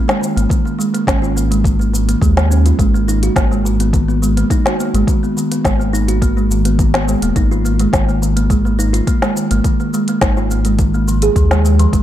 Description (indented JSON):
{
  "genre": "organic downtempo",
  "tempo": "105 BPM",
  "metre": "4/4",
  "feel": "straight",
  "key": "unclear",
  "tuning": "A4 = 437 Hz",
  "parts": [
    { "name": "kalimba", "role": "arpeggios", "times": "0.0-12.0 s", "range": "D#3 to G#4", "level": "-17 LUFS", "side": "right 1 dB", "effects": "ping-pong delay" },
    { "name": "organic electronic drum kit", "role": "drums", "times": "0.1-12.0 s", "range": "hi-hat, shaker, snare drum", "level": "-21 LUFS", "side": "left 1 dB", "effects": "none" },
    { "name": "round analog bass", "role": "bass", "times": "0.4-12.0 s", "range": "D#1 to D#2", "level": "-15 LUFS", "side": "equal", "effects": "tube saturation, sidechain pumping" },
    { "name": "electronic kick drum", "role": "drums", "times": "0.5-12.0 s", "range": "none", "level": "-16 LUFS", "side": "equal", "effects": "overdrive" }
  ],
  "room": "light reverb, digital ambience",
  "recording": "dark, warm production",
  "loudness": "-12 LUFS",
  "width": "side -12 dB against mid",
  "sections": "0.0-11.9 A section",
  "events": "none",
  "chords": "0.0 N.C.; 2.8 G#madd9; 7.4 A#5/G#"
}